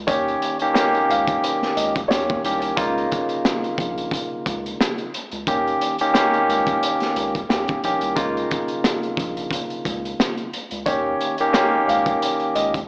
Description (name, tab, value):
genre	hip hop, boom-bap hip-hop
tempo	89 BPM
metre	4/4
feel	swing 55% on 16ths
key	unclear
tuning	A4 = 440 Hz
part	dark upright piano	melody	0.0-2.4, 10.9-12.7 s	Db5 to F5	-28 LUFS	equal	high-pass filter, low-pass filter, tape echo
part	soft dub sub bass	bass	0.0-12.8 s	Bb1 to Eb2	-36 LUFS	equal	none
part	barky tine electric piano	accompaniment	0.1-12.8 s	Db3 to G4	-24 LUFS	equal	high-pass filter, low-pass filter
part	crunchy breakbeat drum kit	drums	0.1-12.9 s	hi-hat, kick drum, rim click, snare drum	-27 LUFS	equal	none
room	light reverb, studio reverb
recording	AM radio sound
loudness	-22 LUFS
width	mono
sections	0.0-12.9 A section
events	break 8.2-10.9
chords	0.1 Eb7; 2.8 Db69; 5.5 Eb7; 8.2 Db69; 10.9 Eb7